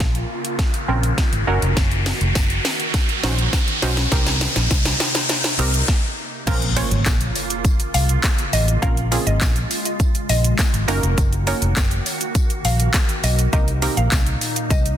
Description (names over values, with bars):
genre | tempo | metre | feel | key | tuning
dance-pop | 102 BPM | 4/4 | straight | Bb minor | A4 = 440 Hz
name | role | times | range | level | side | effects
wide unison pluck | accompaniment | 0.0-14.5 s | Bb3 to Db5 | -26 LUFS | right 3 dB | sidechain pumping, low-pass filter
glassy FM pad | sustained chords | 0.0-15.0 s | Bb2 to Gb4 | -29 LUFS | equal | ensemble chorus, built-in reverb, sidechain pumping, low-pass filter
vintage muted fingered electric bass | bass | 0.0-14.9 s | F1 to C2 | -20 LUFS | equal | sidechain pumping
house drum kit | drums | 0.0-15.0 s | crash cymbal, handclaps, hi-hat, kick drum, shaker, snare drum | -20 LUFS | equal | none
riser and impact | sound effects | 0.1-8.8 s | none | -24 LUFS | equal | none
tambourine | percussion | 1.8-14.8 s | none | -37 LUFS | left 11 dB | none
mallet-like synth pluck | melody | 6.8-14.9 s | Db5 to F5 | -28 LUFS | left 1 dB | chorus, ping-pong delay
room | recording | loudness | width
light reverb, digital ambience | dense, heavily limited modern master | -17 LUFS | side -10 dB against mid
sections
0.0-6.5 A section; 6.5-15.0 B section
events
build-up 0.0-6.5; drum fill 0.0-5.9; riser 0.1-6.5; stop 5.9-6.5; drop 6.5-15.0; impact 6.5-8.8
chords
0.0 Bbmadd9; 1.5 Gb6; 4.1 Cm7; 6.5 Bbmadd9; 10.9 Gb6; 13.5 Cm7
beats
0.00 0.59 1.18 | 1.77 2.35 2.94 3.53 | 4.12 4.71 5.30 5.88 | 6.47 7.06 7.65 8.24 | 8.82 9.41 10.00 10.59 | 11.18 11.77 12.36 12.94 | 13.53 14.12 14.71